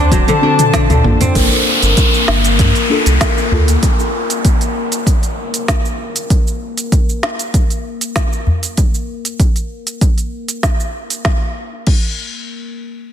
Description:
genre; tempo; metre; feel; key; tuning
organic downtempo; 97 BPM; 4/4; straight; G minor; A4 = 440 Hz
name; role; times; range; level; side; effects
deep mellow chord stab; accompaniment; 0.0-4.1 s; Bb3 to A4; -20 LUFS; left 2 dB; chorus, sidechain pumping, digital delay
muted chamber string section; sustained chords; 0.0-1.4 s; D3 to A5; -19 LUFS; left 2 dB; sidechain pumping
kora; arpeggios; 0.0-3.0 s; D3 to D4; -18 LUFS; left 2 dB; digital delay
round analog bass; bass; 0.0-3.8 s; D1 to G2; -14 LUFS; equal; sidechain pumping
quartz singing bowl; texture; 0.0-6.3 s; Bb3 to F5; -25 LUFS; left 4 dB; none
electronic kick drum; drums; 0.1-12.1 s; none; -14 LUFS; equal; small room ambience
organic electronic drum kit; drums; 0.1-12.1 s; cabasa, crash cymbal, hi-hat, snare drum, toms; -20 LUFS; equal; small room ambience
udu; percussion; 1.2-3.6, 8.5-8.6 s; none; -17 LUFS; left 1 dB; none
downlifter; sound effects; 1.4-6.3 s; none; -18 LUFS; equal; none
room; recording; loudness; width
light reverb, small room ambience; dense, heavily limited modern master; -12 LUFS; side -9 dB against mid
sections
0.0-1.4 A section; 1.4-11.3 B section; 11.3-13.1 C section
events
drum fill 0.1-1.4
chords
0.0 D7; 1.4 Gm7; 6.3 N.C.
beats
0.12 0.73 | 1.35 1.97 2.59 3.21 | 3.83 4.45 5.07 5.68 | 6.30 6.92 7.54 8.16 | 8.78 9.39 10.01 10.63 | 11.25 11.87

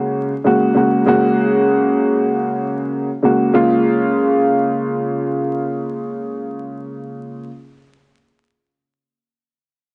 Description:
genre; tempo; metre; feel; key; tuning
hip hop; 97 BPM; 4/4; swing 56% on 16ths; Bb minor; A4 = 440 Hz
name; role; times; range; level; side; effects
warm upright piano; accompaniment; 0.0-7.5 s; Db3 to Gb4; -18 LUFS; equal; high-pass filter, low-pass filter
room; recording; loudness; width
light reverb; heavily compressed radio sound, vinyl crackle, nothing above 10.3 kHz; -17 LUFS; mono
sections
0.0-3.5 A section; 3.5-6.0 B section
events
none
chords
0.0 Ab9sus4; 3.5 Bbm7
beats
0.45 | 1.07 1.69 2.31 2.92 | 3.54 4.16 4.78 5.40

